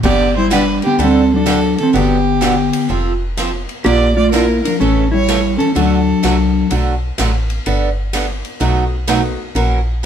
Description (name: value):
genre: country, western swing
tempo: 126 BPM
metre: 4/4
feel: swing 66% on 8ths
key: G major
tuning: A4 = 440 Hz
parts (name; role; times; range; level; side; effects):
- clear fiddle; second line; 0.0-6.7 s; G4 to D5; -19 LUFS; right 4 dB; none
- picked steel-string acoustic guitar; accompaniment; 0.0-10.1 s; B2 to Bb4; -19 LUFS; right 5 dB; none
- woody FM bass; bass; 0.0-10.1 s; F1 to D2; -18 LUFS; equal; none
- swinging big-band drum kit; drums; 0.0-9.7 s; crash cymbal, hi-hat, kick drum, ride cymbal, snare drum; -25 LUFS; equal; none
- clean lap steel guitar; melody; 0.1-6.7 s; D3 to G4; -14 LUFS; left 2 dB; none
- bright upright piano; accompaniment; 8.6-9.4 s; A3 to F#4; -26 LUFS; left 1 dB; none
room: moderate small room reverb, RT60 0.6 s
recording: band playing live in one room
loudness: -13 LUFS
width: side -8 dB against mid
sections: 0.0-10.1 A section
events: none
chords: 0.0 G; 1.0 Dsus4; 1.9 Gmaj7; 2.9 F; 3.8 Bb; 4.8 A; 5.8 D; 7.7 Gadd9; 8.6 B7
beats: | 0.04 0.51 0.99 1.47 | 1.94 2.42 2.90 3.37 | 3.85 4.33 4.80 5.28 | 5.75 6.23 6.71 7.18 | 7.66 8.13 8.61 9.08 | 9.56 10.04